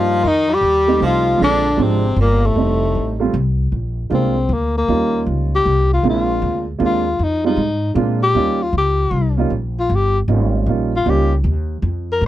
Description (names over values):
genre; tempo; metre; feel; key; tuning
jazz, small-group swing and bop; 155 BPM; 3/4; swing 66% on 8ths; Bb mixolydian; A4 = 438 Hz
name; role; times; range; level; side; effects
breathy tenor saxophone; melody; 0.0-12.2 s; A3 to Bb4; -18 LUFS; left 3 dB; none
bright tenor saxophone; second line; 0.0-3.2 s; A2 to G3; -23 LUFS; right 5 dB; none
warm baby grand piano; accompaniment; 0.0-11.3 s; F3 to F4; -20 LUFS; right 6 dB; none
upright bass; bass; 0.0-12.3 s; F1 to Bb2; -19 LUFS; equal; none
room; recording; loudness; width
little or no reverb; dry, close 1970s-style studio recording; -15 LUFS; side -14 dB against mid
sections
0.0-3.7 A section; 3.7-12.3 B section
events
tenor saxophone solo 3.7-12.3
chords
0.2 F7; 1.4 Bb7; 2.6 F7; 3.7 Bb7; 4.9 Eb7; 6.0 Bb7; 7.2 Fm7; 8.0 Bb7; 8.4 Eb7